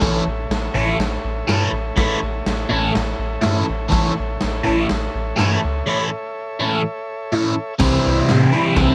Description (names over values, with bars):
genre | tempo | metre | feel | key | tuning
garage rock duo or trio | 123 BPM | 4/4 | straight | A mixolydian | A4 = 443 Hz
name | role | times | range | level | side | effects
overdriven combo organ | sustained chords | 0.0-8.9 s | G4 to E5 | -31 LUFS | equal | none
crunchy overdriven guitar | riff | 0.0-8.9 s | A2 to A4 | -19 LUFS | equal | phaser
soft dub sub bass | bass | 0.0-8.9 s | A1 to C3 | -26 LUFS | equal | none
raw garage drum kit | drums | 0.0-8.9 s | crash cymbal, kick drum, snare drum | -26 LUFS | equal | none
room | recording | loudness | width
little or no reverb | none | -20 LUFS | mono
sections
0.0-7.8 A section; 7.8-8.9 B section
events
break 5.9-7.8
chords
0.0 A; 7.8 C